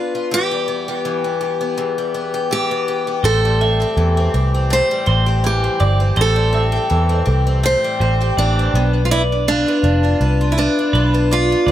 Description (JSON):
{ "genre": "pop", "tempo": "82 BPM", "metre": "4/4", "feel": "swing 55% on 16ths", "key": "A minor", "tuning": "A4 = 440 Hz", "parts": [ { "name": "picked steel-string acoustic guitar", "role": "melody", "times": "0.0-11.7 s", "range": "D4 to C5", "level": "-19 LUFS", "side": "right 1 dB", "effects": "digital delay" }, { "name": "picked twelve-string acoustic guitar", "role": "accompaniment", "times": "0.0-11.7 s", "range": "E2 to B4", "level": "-21 LUFS", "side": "left 3 dB", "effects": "plate reverb" }, { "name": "twelve-string electric guitar", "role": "arpeggios", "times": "3.2-11.7 s", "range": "B4 to F5", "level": "-25 LUFS", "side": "right 5 dB", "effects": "spring reverb, digital delay" }, { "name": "vintage muted picked electric bass", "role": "bass", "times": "3.2-11.7 s", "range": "F1 to E2", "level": "-16 LUFS", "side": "equal", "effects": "none" } ], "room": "light reverb", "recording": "none", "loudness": "-14 LUFS", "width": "side -12 dB against mid", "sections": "0.0-11.7 A section", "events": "none", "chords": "0.3 Em; 3.2 Am7; 8.7 Bdim" }